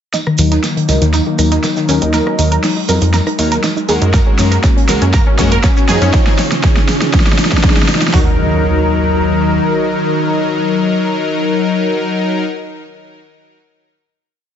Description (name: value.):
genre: progressive house.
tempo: 120 BPM.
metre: 4/4.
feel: straight.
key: Eb minor.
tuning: A4 = 441 Hz.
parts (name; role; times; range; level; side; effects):
airy breathy pad; sustained chords; 0.1-12.4 s; Db3 to Bb5; -20 LUFS; equal; chorus, sidechain pumping.
analog pluck; arpeggios; 0.1-12.4 s; Eb3 to Bb4; -18 LUFS; equal; chorus, sidechain pumping, digital delay.
big-room dance drum kit; drums; 0.1-8.2 s; hi-hat, rim click, snare drum; -18 LUFS; equal; overdrive, sidechain pumping on hats.
loose indie drum kit; drums; 0.1-6.0 s; hi-hat, snare drum, tambourine; -27 LUFS; right 2 dB; high-pass filter on hats, high-pass filter on snare, high-pass filter on perc, high-pass filter on room.
shekere; percussion; 0.1-6.1 s; none; -26 LUFS; right 5 dB; none.
riser and impact; sound effects; 3.8-12.5 s; none; -25 LUFS; right 2 dB; none.
soft supersaw; stabs; 0.4-12.4 s; F3 to Db5; -17 LUFS; left 3 dB; cassette tape, sidechain pumping, low-pass filter, digital delay.
plucky analog bass; bass; 0.4-9.6 s; Db2 to Gb2; -15 LUFS; equal; sidechain pumping.
big-room dance drum kit; drums; 4.1-8.3 s; hi-hat, kick drum, snare drum; -12 LUFS; equal; overdrive.
room: light reverb, small room ambience.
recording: nothing above 7.8 kHz.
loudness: -11 LUFS.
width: side -9 dB against mid.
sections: 0.1-8.1 build; 8.1-12.1 final chord.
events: build-up 0.1-8.1; drum fill 0.1-8.1; filter sweep on synth pluck 0.1-6.1; filter sweep on supersaw synth 0.1-6.1; riser 3.8-8.1.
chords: 0.1 Gbadd9; 6.1 Dbadd9; 8.1 Ebm.